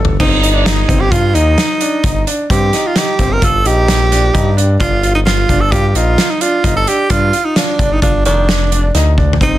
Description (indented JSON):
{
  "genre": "progressive instrumental, band music in an uneven meter",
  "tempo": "130 BPM",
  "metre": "5/4",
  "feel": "straight",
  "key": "G minor",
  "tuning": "A4 = 440 Hz",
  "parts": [
    { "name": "bright baby grand piano", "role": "arpeggios", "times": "0.0-9.6 s", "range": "Eb3 to A4", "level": "-20 LUFS", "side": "left 1 dB", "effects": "plate reverb" },
    { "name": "smooth synth bass", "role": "bass", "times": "0.0-9.6 s", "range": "F1 to G2", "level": "-14 LUFS", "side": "equal", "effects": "none" },
    { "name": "loose indie drum kit", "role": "drums", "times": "0.0-9.5 s", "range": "crash cymbal, hi-hat, kick drum, snare drum, toms", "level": "-16 LUFS", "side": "equal", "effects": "none" },
    { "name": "warm tenor saxophone", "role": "melody", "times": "0.2-9.6 s", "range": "D4 to Bb4", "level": "-15 LUFS", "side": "right 2 dB", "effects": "plate reverb" }
  ],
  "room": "light reverb",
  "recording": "dense, heavily limited modern master",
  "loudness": "-10 LUFS",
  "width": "side -14 dB against mid",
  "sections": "0.2-9.6 A section",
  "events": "drum fill 0.0, 9.2",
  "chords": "0.2 Cm7/G; 4.8 G7(no3)"
}